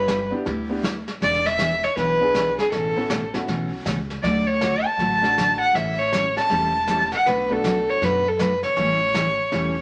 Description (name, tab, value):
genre	country, western swing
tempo	159 BPM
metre	4/4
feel	swing 64% on 8ths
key	unclear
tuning	A4 = 440 Hz
part	dark fiddle	melody	0.0-9.8 s	G#4 to A5	-23 LUFS	equal	none
part	upright bass	bass	0.0-9.8 s	E1 to F#2	-33 LUFS	equal	none
part	picked steel-string acoustic guitar	accompaniment	0.1-9.8 s	B2 to A4	-30 LUFS	equal	none
part	vintage brush drum kit	drums	0.1-9.8 s	brushed snare drum, hi-hat, snare drum	-33 LUFS	equal	none
part	clear upright piano	accompaniment	0.3-9.7 s	A3 to A4	-32 LUFS	equal	none
room	wet studio reverb, RT60 0.8 s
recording	none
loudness	-22 LUFS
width	mono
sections	0.0-9.8 A section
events	none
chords	0.0 G6; 1.2 E7; 2.7 Aadd9; 4.2 D; 5.7 A7; 7.3 Bm7; 8.8 A7